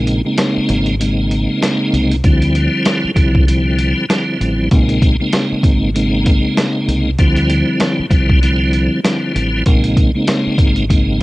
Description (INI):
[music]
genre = hip hop, boom-bap hip-hop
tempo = 97 BPM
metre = 4/4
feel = swing 59% on 16ths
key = unclear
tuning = A4 = 440 Hz
[part]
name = tonewheel organ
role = accompaniment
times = 0.0-11.2 s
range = Db3 to E4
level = -15 LUFS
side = equal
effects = overdrive, chorus vibrato, slow rotary speaker, high-pass filter, low-pass filter, cassette tape
[part]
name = deep dub fingered electric bass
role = bass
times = 0.0-11.2 s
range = Ab1 to D2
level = -18 LUFS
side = equal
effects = tube saturation
[part]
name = dusty soul sampler-style drum kit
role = drums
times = 0.1-11.2 s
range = hi-hat, kick drum, rim click, snare drum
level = -15 LUFS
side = equal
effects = none
[sound]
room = light reverb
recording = home recording on cassette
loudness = -12 LUFS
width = side -19 dB against mid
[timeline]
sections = 0.0-11.2 A section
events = break 0.0-2.2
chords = 0.0 Bbm11; 2.2 Dm11; 4.7 Bbm11; 7.2 Dm11; 9.7 Bbm11